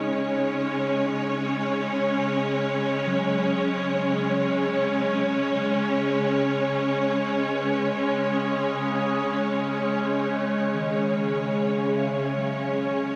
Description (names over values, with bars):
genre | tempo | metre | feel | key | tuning
ambient | free time | none | none | unclear | A4 = 440 Hz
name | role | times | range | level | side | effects
clear symphonic string section | sustained chords | 0.0-13.2 s | C#3 to C#5 | -26 LUFS | equal | none
mellow electric guitar | arpeggios | 0.0-13.2 s | D#3 to E5 | -38 LUFS | equal | none
overtone-sweeping drone | drone | 5.1-13.2 s | C#3 to G#3 | -32 LUFS | equal | chorus, built-in reverb
room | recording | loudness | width
wet lush hall reverb, RT60 2.8 s | cassette tape | -25 LUFS | mono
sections
0.0-13.2 A section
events
none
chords
0.0 C#9sus4